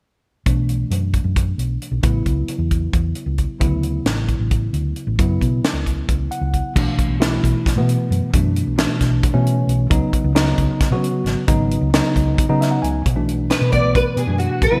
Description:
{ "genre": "electric jazz fusion", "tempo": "267 BPM (eighths)", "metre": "7/8", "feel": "straight", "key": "B minor", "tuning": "A4 = 440 Hz", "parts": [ { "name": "tine electric piano", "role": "accompaniment", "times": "0.5-14.8 s", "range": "B2 to G#5", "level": "-24 LUFS", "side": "equal", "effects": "overdrive" }, { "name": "hollow-body short-scale fingered electric bass", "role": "bass", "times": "0.5-14.7 s", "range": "G#1 to C#3", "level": "-23 LUFS", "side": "equal", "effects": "none" }, { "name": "tight funk drum kit", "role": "drums", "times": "0.5-14.7 s", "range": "crash cymbal, hi-hat, kick drum, snare drum", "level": "-23 LUFS", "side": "equal", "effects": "gated reverb" }, { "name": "nylon-string guitar", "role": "melody", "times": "13.5-14.8 s", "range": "F#4 to D5", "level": "-21 LUFS", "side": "equal", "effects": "ensemble chorus" } ], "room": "light reverb, studio ambience", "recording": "bright 1980s-style digital production", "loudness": "-19 LUFS", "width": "mono", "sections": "0.5-6.8 A section; 6.8-13.0 B section; 13.0-14.8 C section", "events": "tine electric piano fill 6.1-6.8, 12.4-13.0", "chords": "0.5 Bm7; 2.0 A69; 3.6 Dmaj7; 5.2 F#7sus4; 6.8 Bm9; 9.9 C#sus2; 13.0 Bm7", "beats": "| 0.46 0.68 0.91 1.13 1.36 1.58 1.81 | 2.03 2.26 2.48 2.71 2.93 3.16 3.38 | 3.61 3.83 4.06 4.28 4.51 4.73 4.96 | 5.18 5.41 5.63 5.86 6.08 6.31 6.53 | 6.76 6.98 7.21 7.43 7.66 7.88 8.11 | 8.33 8.55 8.78 9.00 9.23 9.45 9.68 | 9.90 10.13 10.35 10.57 10.80 11.02 11.25 | 11.47 11.70 11.92 12.15 12.37 12.60 12.82 | 13.04 13.27 13.49 13.72 13.94 14.17 14.39 | 14.62" }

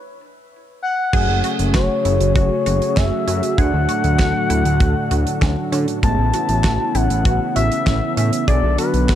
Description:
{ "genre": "synth-pop", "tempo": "98 BPM", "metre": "4/4", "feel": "straight", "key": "F# minor", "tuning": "A4 = 440 Hz", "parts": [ { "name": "expressive synth lead", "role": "melody", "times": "0.8-9.2 s", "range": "B4 to A5", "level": "-22 LUFS", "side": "left 4 dB", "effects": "chorus, digital delay" }, { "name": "mellow synth brass", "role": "accompaniment", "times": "1.1-9.2 s", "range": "A3 to A4", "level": "-25 LUFS", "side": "right 2 dB", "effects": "chorus" }, { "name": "warm analog pad", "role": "sustained chords", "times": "1.1-9.2 s", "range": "A2 to G#4", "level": "-24 LUFS", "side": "equal", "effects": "chorus" }, { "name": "resonant blip pluck", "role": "arpeggios", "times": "1.1-9.2 s", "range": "G#3 to G#4", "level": "-29 LUFS", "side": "right 1 dB", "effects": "phaser, digital delay" }, { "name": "fat analog bass", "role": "bass", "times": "1.1-9.2 s", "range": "F#1 to D3", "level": "-19 LUFS", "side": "equal", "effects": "none" }, { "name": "damped 70s drum kit", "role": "drums", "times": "1.1-9.2 s", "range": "crash cymbal, handclaps, hi-hat, kick drum, snare drum", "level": "-20 LUFS", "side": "right 1 dB", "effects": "none" } ], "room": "light reverb, small room ambience", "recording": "dark, warm production", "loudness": "-15 LUFS", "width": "side -11 dB against mid", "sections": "0.0-1.1 A section; 1.1-9.2 B section", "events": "stop 0.0-1.1", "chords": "0.0 N.C.; 1.1 F#madd9; 3.6 D; 6.0 Aadd9; 8.5 Bm7", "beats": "0.52 | 1.13 1.75 2.36 2.97 | 3.58 4.19 4.81 5.42 | 6.03 6.64 7.25 7.87 | 8.48 9.09" }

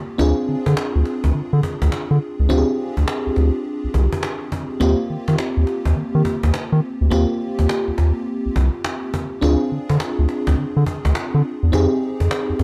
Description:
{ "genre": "R&B, new jack swing", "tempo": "104 BPM", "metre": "4/4", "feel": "swing 64% on 16ths", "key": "F dorian", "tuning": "A4 = 439 Hz", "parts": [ { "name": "FM electric piano with soft pad layer", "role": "accompaniment", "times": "0.0-12.6 s", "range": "Bb3 to Ab4", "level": "-24 LUFS", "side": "equal", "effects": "chorus, tremolo" }, { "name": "cajon", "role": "drums", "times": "0.1-12.6 s", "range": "none", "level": "-30 LUFS", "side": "equal", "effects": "none" }, { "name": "round analog bass", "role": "bass", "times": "0.2-12.6 s", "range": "C2 to Eb3", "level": "-19 LUFS", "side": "equal", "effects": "none" } ], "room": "small room ambience", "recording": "dark, warm production", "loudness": "-20 LUFS", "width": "mono", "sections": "0.0-12.6 A section", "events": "none", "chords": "0.2 Fm69; 4.8 Eb6; 9.4 Dm7b5; 11.7 Fm7", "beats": "| 0.19 0.77 1.35 1.92 | 2.50 3.08 3.65 4.23 | 4.81 5.38 5.96 6.54 | 7.12 7.69 8.27 8.85 | 9.42 10.00 10.58 11.15 | 11.73 12.31" }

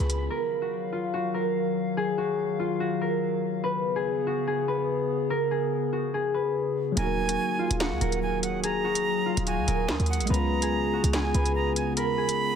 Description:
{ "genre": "hip hop, drill", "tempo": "144 BPM", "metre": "4/4", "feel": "half-time", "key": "Eb minor", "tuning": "A4 = 440 Hz", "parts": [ { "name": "concert harp", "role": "melody", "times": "0.0-12.6 s", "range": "F4 to Cb5", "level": "-28 LUFS", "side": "left 1 dB", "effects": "low-pass filter" }, { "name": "breathy bright jazz flute", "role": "second line", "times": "0.0-0.3, 7.0-12.6 s", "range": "Gb5 to Cb6", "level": "-31 LUFS", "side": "right 4 dB", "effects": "tape echo" }, { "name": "tine electric piano", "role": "accompaniment", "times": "0.0-0.3, 6.9-12.6 s", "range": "Gb3 to Gb4", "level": "-32 LUFS", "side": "equal", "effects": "medium stereo tremolo, low-pass filter" }, { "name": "warbly tape-like pad", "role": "sustained chords", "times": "0.0-12.6 s", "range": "Db3 to F5", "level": "-32 LUFS", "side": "left 3 dB", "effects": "chorus, built-in reverb" }, { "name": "short 808-style bass", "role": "bass", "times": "0.0-0.3, 7.0-12.6 s", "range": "Eb1 to Eb2", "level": "-28 LUFS", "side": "equal", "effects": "none" }, { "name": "drill drum kit", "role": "drums", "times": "0.0-0.2, 7.0-12.4 s", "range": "handclaps, hi-hat, snare drum", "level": "-30 LUFS", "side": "equal", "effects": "none" } ], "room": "light reverb", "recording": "dense, heavily limited modern master", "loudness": "-24 LUFS", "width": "side -7 dB against mid", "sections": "0.3-12.6 A section", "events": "none", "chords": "0.3 Ebmadd9; 3.6 Db5; 7.0 Ebm; 10.3 Db7", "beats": "| 0.30 0.72 1.14 1.55 | 1.97 2.39 2.80 3.22 | 3.64 4.05 4.47 4.89 | 5.30 5.72 6.14 6.55 | 6.97 7.39 7.80 8.22 | 8.64 9.05 9.47 9.89 | 10.30 10.72 11.14 11.55 | 11.97 12.39" }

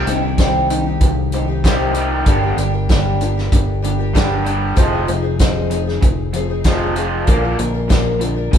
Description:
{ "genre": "folk rock and heartland rock", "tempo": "96 BPM", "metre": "4/4", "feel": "straight", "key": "C minor", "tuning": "A4 = 440 Hz", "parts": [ { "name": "picked twelve-string acoustic guitar", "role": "accompaniment", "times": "0.0-8.6 s", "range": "G2 to Bb4", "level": "-22 LUFS", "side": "left 3 dB", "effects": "none" }, { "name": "raw garage guitar", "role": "riff", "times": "0.0-8.6 s", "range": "F2 to Bb3", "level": "-22 LUFS", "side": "right 1 dB", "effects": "overdrive" }, { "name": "fingered electric bass", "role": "bass", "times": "0.0-8.6 s", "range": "F1 to C2", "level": "-20 LUFS", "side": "equal", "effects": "none" }, { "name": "vintage drum kit", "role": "drums", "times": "0.1-8.6 s", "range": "hi-hat, kick drum, snare drum", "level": "-17 LUFS", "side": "equal", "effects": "none" } ], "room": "moderate large studio reverb, RT60 1.2 s", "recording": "band playing live in one room", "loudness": "-14 LUFS", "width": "side -8 dB against mid", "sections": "0.0-8.6 A section", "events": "none", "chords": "0.0 Cm; 2.3 Gm; 4.8 Fm7; 7.3 Bb", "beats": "0.39 1.02 1.65 | 2.27 2.90 3.53 4.15 | 4.78 5.41 6.03 6.66 | 7.29 7.91 8.54" }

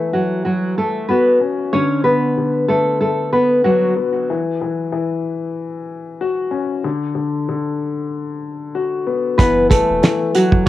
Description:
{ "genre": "hip hop, boom-bap hip-hop", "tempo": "94 BPM", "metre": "4/4", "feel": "swing 57% on 16ths", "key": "F# minor", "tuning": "A4 = 441 Hz", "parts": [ { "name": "nylon-string guitar", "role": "melody", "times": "0.0-3.9, 9.4-10.7 s", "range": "F#3 to C#5", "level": "-16 LUFS", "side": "equal", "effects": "high-pass filter, low-pass filter, cassette tape" }, { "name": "dark concert grand piano", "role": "accompaniment", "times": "0.0-10.7 s", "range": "D3 to F#4", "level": "-21 LUFS", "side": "left 5 dB", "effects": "cassette tape, high-pass filter, low-pass filter" }, { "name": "soft dub sub bass", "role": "bass", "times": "9.4-10.6 s", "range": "E1 to F#1", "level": "-26 LUFS", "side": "right 1 dB", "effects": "none" }, { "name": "cloth-damped thuddy drum kit", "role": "drums", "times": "9.4-10.7 s", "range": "hi-hat, kick drum, snare drum", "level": "-13 LUFS", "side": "right 1 dB", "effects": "cassette tape" }, { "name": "sleigh bells", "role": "percussion", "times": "9.4-10.5 s", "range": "none", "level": "-31 LUFS", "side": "right 10 dB", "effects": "none" } ], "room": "moderate studio reverb, RT60 0.5 s", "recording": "home recording on cassette", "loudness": "-15 LUFS", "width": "side -14 dB against mid", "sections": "0.0-9.4 A section; 9.4-10.7 B section", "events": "none", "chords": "0.0 F#m7; 1.7 Bm7; 4.3 F#5; 6.8 Bm; 9.4 F#m7", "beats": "0.45 1.09 | 1.73 2.37 3.01 3.65 | 4.28 4.92 5.56 6.20 | 6.84 7.47 8.11 8.75 | 9.39 10.03 10.67" }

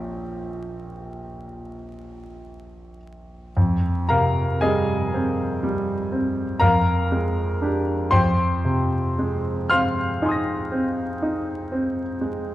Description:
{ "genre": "classical, impressionist solo piano", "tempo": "32-41 BPM (dotted quarters)", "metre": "9/8", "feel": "rubato", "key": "F minor", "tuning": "A4 = 440 Hz", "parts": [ { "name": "clear concert grand piano", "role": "solo", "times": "0.0-12.5 s", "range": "Bb1 to Bb6", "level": "-21 LUFS", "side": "equal", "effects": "none" } ], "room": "wet recital hall reverb, RT60 1.4 s", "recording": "dark, warm production, vinyl crackle", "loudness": "-20 LUFS", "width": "side -14 dB against mid", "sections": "0.0-3.6 A section; 3.6-12.5 B section", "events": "none", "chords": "0.0 Bbm6; 3.6 Fmadd9; 6.6 Bb6/F; 8.1 Ab69/F", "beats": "0.07 1.87 | 3.56 5.12 6.61 | 8.11 9.71 11.21" }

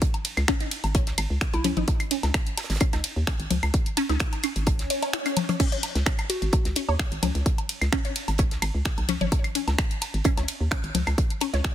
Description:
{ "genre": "minimal techno", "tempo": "129 BPM", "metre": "4/4", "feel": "swing 53% on 16ths", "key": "C# minor", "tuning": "A4 = 441 Hz", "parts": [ { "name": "damped 70s drum kit", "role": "drums", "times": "0.0-11.7 s", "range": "hi-hat, snare drum", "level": "-40 LUFS", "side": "right 5 dB", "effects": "none" }, { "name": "electronic kick drum", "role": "drums", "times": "0.0-11.7 s", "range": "none", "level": "-24 LUFS", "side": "equal", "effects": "none" }, { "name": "house drum kit", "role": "drums", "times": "0.0-11.7 s", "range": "crash cymbal, finger snaps, hi-hat, ride cymbal", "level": "-30 LUFS", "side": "equal", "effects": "soft clipping on snare" }, { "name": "woodblock and congas", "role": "percussion", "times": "0.1-11.5 s", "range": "none", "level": "-31 LUFS", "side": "left 4 dB", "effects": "dub echo" }, { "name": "hollow knocking FM bass", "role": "bass", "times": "0.4-11.6 s", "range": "G#1 to D#2", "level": "-26 LUFS", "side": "equal", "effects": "sidechain pumping" }, { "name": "resonant blip pluck", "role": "riff", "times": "0.5-11.6 s", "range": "C#4 to C#5", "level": "-30 LUFS", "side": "equal", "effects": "phaser, analog chorus, sidechain pumping, ping-pong delay" }, { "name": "hollow square pluck", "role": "melody", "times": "1.5-1.7, 6.3-6.8 s", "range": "E4 to F#4", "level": "-33 LUFS", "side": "left 1 dB", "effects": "chorus, dub echo" }, { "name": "swell", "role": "sound effects", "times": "4.8-5.6 s", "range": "none", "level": "-33 LUFS", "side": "right 2 dB", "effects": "none" } ], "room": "little or no reverb", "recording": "dense, heavily limited modern master", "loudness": "-23 LUFS", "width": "side -11 dB against mid", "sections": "0.0-11.7 A section", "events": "swell 4.8-5.6; kick drops out 5.1-5.6", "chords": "0.0 C#5", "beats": "| 0.02 0.48 0.95 1.41 | 1.88 2.34 2.81 3.27 | 3.74 4.20 4.67 5.13 | 5.60 6.06 6.53 6.99 | 7.46 7.92 8.39 8.86 | 9.32 9.79 10.25 10.71 | 11.18 11.64" }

